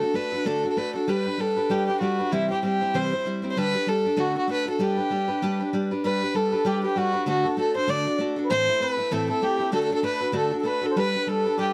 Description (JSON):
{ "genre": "celtic folk", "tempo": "194 BPM", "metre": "4/4", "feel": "swing 57% on 8ths", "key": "G major", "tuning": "A4 = 439 Hz", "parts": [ { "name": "dark fiddle", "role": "melody", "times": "0.0-11.7 s", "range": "E4 to D5", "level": "-27 LUFS", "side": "equal", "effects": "none" }, { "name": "picked steel-string acoustic guitar", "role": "accompaniment", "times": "0.0-11.7 s", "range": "A2 to C5", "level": "-29 LUFS", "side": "equal", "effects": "none" }, { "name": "mellow accordion", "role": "second line", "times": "6.1-11.7 s", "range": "F#4 to D5", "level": "-32 LUFS", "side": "equal", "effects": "none" } ], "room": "moderate booth ambience, RT60 0.2 s", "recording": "none", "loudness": "-25 LUFS", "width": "mono", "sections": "0.0-6.0 A section; 6.0-11.7 A section", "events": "none", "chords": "0.0 D; 1.1 G; 2.3 C; 3.6 Dsus4; 4.2 D; 4.8 G; 7.3 D; 8.5 Am; 9.7 D; 11.0 G" }